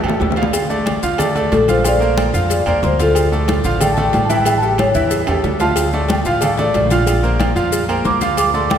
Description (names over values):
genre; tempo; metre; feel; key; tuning
latin, salsa; 184 BPM; 4/4; straight; D minor; A4 = 439 Hz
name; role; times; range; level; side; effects
marimba with soft mallets; melody; 0.0-8.8 s; A4 to D6; -19 LUFS; left 1 dB; none
bright grand piano; accompaniment; 0.0-8.8 s; E3 to F5; -19 LUFS; right 2 dB; none
upright bass; bass; 0.0-8.8 s; A1 to F2; -20 LUFS; equal; none
agogo bells and timbales; percussion; 0.0-8.8 s; none; -24 LUFS; right 3 dB; none
bongos and cowbell; percussion; 0.0-8.8 s; none; -25 LUFS; left 3 dB; none
congas; percussion; 0.1-8.8 s; none; -24 LUFS; left 2 dB; none
maracas; percussion; 0.5-8.8 s; none; -30 LUFS; left 7 dB; none
room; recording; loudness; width
wet cathedral reverb, RT60 4.4 s; recorded in a church or concert hall; -13 LUFS; side -9 dB against mid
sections
0.0-8.8 A section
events
drum fill 0.0-0.5, 5.3-5.8; marimba solo 0.0-8.8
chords
0.0 A5; 0.5 Dm; 1.8 Bbadd9; 3.2 Dm; 4.5 A7; 5.8 Dm; 7.1 Bbadd9